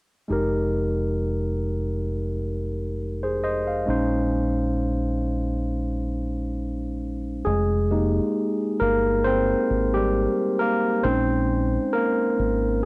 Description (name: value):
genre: R&B, neo-soul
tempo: 67 BPM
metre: 4/4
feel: swing 54% on 16ths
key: F minor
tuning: A4 = 439 Hz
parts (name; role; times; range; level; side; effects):
- barky tine electric piano; accompaniment; 0.3-12.9 s; G3 to F5; -23 LUFS; equal; overdrive
- deep dub fingered electric bass; bass; 0.3-12.9 s; F1 to Bb1; -26 LUFS; equal; none
room: light reverb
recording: home recording on cassette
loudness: -21 LUFS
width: side -25 dB against mid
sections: 0.3-7.4 A section; 7.4-12.9 B section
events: tine electric piano solo 7.4-12.9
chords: 0.3 Fm11; 3.9 Bbm11; 7.4 Fm11; 11.0 Bbm11